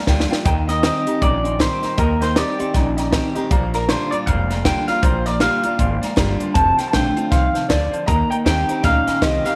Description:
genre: rockabilly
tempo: 157 BPM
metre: 4/4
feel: swing 61% on 8ths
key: Bb major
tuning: A4 = 440 Hz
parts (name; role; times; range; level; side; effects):
- electric guitar through a small old amp; melody; 0.0-9.6 s; Bb4 to Bb5; -23 LUFS; equal; warbly pitch drift, tape echo
- clear upright piano; accompaniment; 0.0-9.5 s; C5 to C6; -32 LUFS; equal; none
- picked steel-string acoustic guitar; accompaniment; 0.0-9.6 s; F2 to G4; -30 LUFS; equal; none
- electric guitar through a small old amp; riff; 0.0-9.6 s; F2 to Db4; -27 LUFS; equal; phaser
- upright bass; bass; 0.1-9.5 s; F1 to Eb2; -24 LUFS; equal; none
- compact cocktail drum kit; drums; 0.1-9.5 s; hi-hat, kick drum, snare drum; -24 LUFS; equal; none
room: light reverb, small room ambience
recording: none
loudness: -18 LUFS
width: mono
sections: 0.0-9.6 A section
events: drum fill 0.0-0.5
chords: 0.5 Eb6; 3.5 Bb6; 6.6 F6; 8.1 Eb6

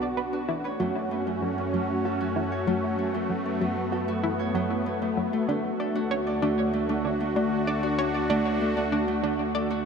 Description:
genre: ambient, sequencer-driven space music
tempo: 96 BPM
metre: 4/4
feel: straight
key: unclear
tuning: A4 = 442 Hz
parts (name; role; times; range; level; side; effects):
- sweeping resonant pad; sustained chords; 0.0-9.9 s; A3 to F#4; -28 LUFS; equal; chorus
- Celtic harp; arpeggios; 0.0-9.9 s; A3 to D5; -30 LUFS; equal; auto-pan, tape echo
- analog pluck; riff; 0.0-9.8 s; F#3 to D5; -31 LUFS; equal; chorus, tape echo
- analog drone; bass; 0.0-9.9 s; B1 to F#2; -36 LUFS; equal; chorus, tube saturation
room: wet huge ambient reverb, RT60 7.5 s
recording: none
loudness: -24 LUFS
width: side -6 dB against mid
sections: 0.0-9.9 A section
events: fade-in on harp 0.0-9.9; filter sweep on synth arpeggio sound 0.0-9.9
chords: 0.5 F#m; 5.5 D

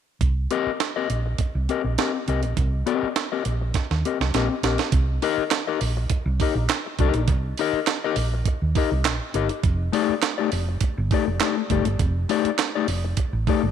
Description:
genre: funk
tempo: 102 BPM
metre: 4/4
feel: straight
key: C dorian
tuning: A4 = 440 Hz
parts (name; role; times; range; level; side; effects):
- hollow-body short-scale fingered electric bass; bass; 0.2-13.7 s; F1 to Eb2; -24 LUFS; right 1 dB; none
- breakbeat sampler-style drum kit; drums; 0.2-13.6 s; handclaps, hi-hat, kick drum, snare drum; -24 LUFS; right 5 dB; none
- mellow electric guitar; accompaniment; 0.5-13.7 s; A3 to Eb5; -25 LUFS; left 10 dB; spring reverb
room: light reverb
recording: 1960s-style stereo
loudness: -21 LUFS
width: side -8 dB against mid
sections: 0.2-4.9 A section; 4.9-13.7 B section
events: drum fill 3.7-4.9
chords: 0.2 Cm7; 9.6 F13

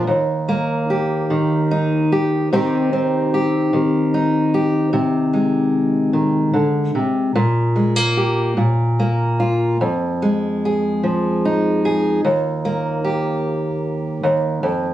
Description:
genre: folk, solo fingerstyle acoustic guitar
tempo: 50 BPM (dotted quarters)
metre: 6/8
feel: straight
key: Eb major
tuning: A4 = 440 Hz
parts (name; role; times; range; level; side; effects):
- fingerpicked steel-string acoustic guitar; solo; 0.0-14.9 s; Eb2 to Ab4; -16 LUFS; equal; none
room: light reverb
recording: recorded on a phone in the room, studio reverb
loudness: -16 LUFS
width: side -13 dB against mid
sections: 0.1-14.9 A section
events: none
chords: 0.1 Eb; 2.5 Cm; 4.9 Ab/C; 7.4 Gm/Bb; 8.6 Bb5; 9.8 Fm7; 12.2 Eb

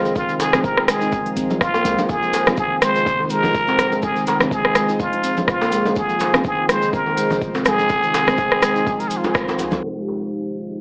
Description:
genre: afro house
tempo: 124 BPM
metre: 4/4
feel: swing 56% on 16ths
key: F minor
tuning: A4 = 440 Hz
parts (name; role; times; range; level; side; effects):
- trumpet with plunger mute; melody; 0.0-9.3 s; F4 to C5; -23 LUFS; equal; digital delay
- ethereal airy pad; sustained chords; 0.0-10.8 s; C3 to C5; -33 LUFS; equal; none
- warm 808-style bass; bass; 0.0-10.8 s; F1 to C2; -38 LUFS; equal; sidechain pumping
- congas; percussion; 0.1-9.8 s; none; -33 LUFS; equal; none
- tube shaker; percussion; 0.1-9.8 s; none; -38 LUFS; equal; none
- handpan; arpeggios; 0.2-9.7 s; C3 to F4; -26 LUFS; equal; sidechain pumping, digital delay
- electronic kick drum; drums; 0.2-9.5 s; none; -31 LUFS; equal; small room ambience
- djembe; percussion; 0.2-10.2 s; none; -30 LUFS; equal; none
- afro-pop drum kit; drums; 0.4-9.7 s; hi-hat, rim click; -22 LUFS; equal; small room ambience
- mellow synth brass; stabs; 9.8-10.8 s; Ab3 to G4; -29 LUFS; equal; chorus, sidechain pumping, digital delay
room: moderate digital room reverb, RT60 1.1 s, small room ambience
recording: low-pass filter, AM radio sound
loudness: -19 LUFS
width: mono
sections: 0.0-9.8 A section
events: band accent 9.4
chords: 0.0 Fm7

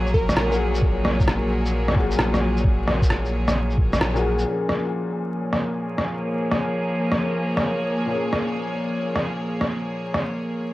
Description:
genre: future garage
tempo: 132 BPM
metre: 4/4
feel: swing 66% on 16ths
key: Bb minor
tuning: A4 = 440 Hz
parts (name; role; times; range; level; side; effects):
- felt-muted upright piano; accompaniment; 0.0-10.7 s; Bb2 to Ab4; -29 LUFS; left 4 dB; sidechain pumping, cassette tape, tape echo
- bright chamber string section; sustained chords; 0.0-10.7 s; F3 to Db5; -25 LUFS; equal; sidechain pumping, low-pass filter, cassette tape
- soft dub sub bass; bass; 0.0-4.4 s; Bb1; -25 LUFS; equal; sidechain pumping
- plucky unison lead; melody; 0.1-0.6 s; Bb4; -30 LUFS; right 1 dB; none
- electronic kick drum; drums; 0.1-3.9 s; none; -20 LUFS; equal; none
- electronic shaker and rim click; drums; 0.1-10.3 s; none; -24 LUFS; equal; none
room: light reverb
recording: home recording on cassette, vinyl crackle, lossy compression artefacts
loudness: -20 LUFS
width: side -17 dB against mid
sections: 0.0-4.5 A section; 4.5-10.7 B section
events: band accent 4.0; filter sweep on string section 4.5-10.7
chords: 0.0 Gbadd9/Bb; 4.5 Bbm7

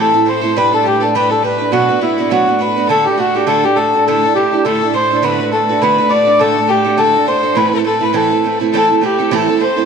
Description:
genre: celtic folk, Celtic reel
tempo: 205 BPM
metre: 4/4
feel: swing 56% on 8ths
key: A dorian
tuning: A4 = 440 Hz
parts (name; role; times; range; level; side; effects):
- mellow accordion; melody; 0.0-9.9 s; E4 to D5; -13 LUFS; left 2 dB; none
- clear fiddle; second line; 0.0-9.9 s; E4 to D5; -23 LUFS; left 13 dB; none
- concert harp; second line; 0.0-1.0, 8.7-9.9 s; G4 to C5; -25 LUFS; right 9 dB; none
- picked steel-string acoustic guitar; accompaniment; 0.0-9.9 s; A2 to B4; -17 LUFS; right 8 dB; none
- warm chamber string section; drone; 0.0-8.8 s; A2 to A3; -25 LUFS; equal; stereo widening
room: moderate plate reverb, RT60 2.7 s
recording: 1960s-style stereo with parts hard left and right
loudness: -11 LUFS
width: side -6 dB against mid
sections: 0.0-8.7 A section; 8.7-9.9 A section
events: none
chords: 0.0 Am; 0.5 G; 1.7 Bm; 2.9 D; 4.1 Dsus2; 5.2 Bm; 6.4 D; 7.6 Amadd9; 8.7 Am

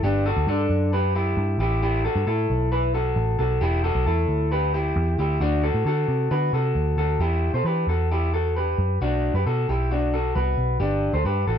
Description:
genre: jangly indie pop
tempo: 134 BPM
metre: 4/4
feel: straight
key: E minor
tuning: A4 = 443 Hz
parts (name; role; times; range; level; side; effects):
- electric guitar through a small old amp; arpeggios; 0.0-11.6 s; D4 to C5; -24 LUFS; left 1 dB; slapback echo
- vintage muted picked electric bass; bass; 0.0-11.6 s; E1 to E3; -23 LUFS; equal; none
room: little or no reverb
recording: dry, close 1970s-style studio recording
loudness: -20 LUFS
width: side -8 dB against mid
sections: 0.0-7.2 A section; 7.2-11.6 B section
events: none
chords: 0.0 G; 1.6 A5; 3.6 Em; 5.4 D7; 7.2 Em; 9.0 Bm; 10.8 Gadd9

